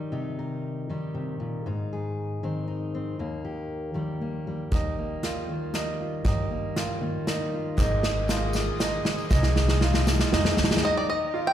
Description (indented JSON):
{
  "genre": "indie folk with a building arrangement",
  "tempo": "118 BPM",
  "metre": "3/4",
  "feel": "straight",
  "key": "Eb major",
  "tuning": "A4 = 438 Hz",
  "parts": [
    { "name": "fingerpicked steel-string acoustic guitar", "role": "accompaniment", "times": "0.0-9.3 s", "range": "Eb2 to Bb4", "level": "-31 LUFS", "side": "left 2 dB", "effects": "none" },
    { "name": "clear upright piano", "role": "arpeggios", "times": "4.7-11.5 s", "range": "Eb4 to F4", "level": "-31 LUFS", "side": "right 4 dB", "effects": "slapback echo, digital delay" },
    { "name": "upright bass", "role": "bass", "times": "4.7-10.8 s", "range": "Ab1 to G2", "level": "-27 LUFS", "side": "equal", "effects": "none" },
    { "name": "unplugged drum kit", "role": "drums", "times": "4.7-10.9 s", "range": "hi-hat, kick drum, snare drum", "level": "-26 LUFS", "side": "equal", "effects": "none" },
    { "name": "bright upright piano", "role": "accompaniment", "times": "7.8-10.8 s", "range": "Ab1 to Eb5", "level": "-35 LUFS", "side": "equal", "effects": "slapback echo" },
    { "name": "picked twelve-string acoustic guitar", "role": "accompaniment", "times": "7.8-10.8 s", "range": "Ab2 to Ab4", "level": "-34 LUFS", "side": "left 2 dB", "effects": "slapback echo" },
    { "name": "warm chamber string section", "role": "sustained chords", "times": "7.8-11.5 s", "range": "Eb3 to Eb6", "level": "-39 LUFS", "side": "equal", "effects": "none" },
    { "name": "tambourine", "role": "percussion", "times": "7.8-10.2 s", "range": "none", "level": "-43 LUFS", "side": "right 2 dB", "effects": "none" },
    { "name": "bluegrass banjo", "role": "melody", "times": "10.8-11.5 s", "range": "D5 to G5", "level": "-25 LUFS", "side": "left 1 dB", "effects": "slapback echo" }
  ],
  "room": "light reverb, small room ambience",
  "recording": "live gig heard through the venue's PA, recital hall reverb",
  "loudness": "-24 LUFS",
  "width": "side -10 dB against mid",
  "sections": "0.0-4.7 A section; 4.7-10.8 B section",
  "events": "build-up 4.7-10.8; drum fill 4.7-10.8",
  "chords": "0.0 Cm; 1.7 Ab; 3.2 Eb; 7.8 Ab; 10.8 Eb",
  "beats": "| 0.12 0.63 1.15 | 1.66 2.17 2.68 | 3.19 3.70 4.21 | 4.72 5.24 5.75 | 6.25 6.76 7.27 | 7.78 8.29 8.80 | 9.31 9.81 10.32 | 10.83 11.33"
}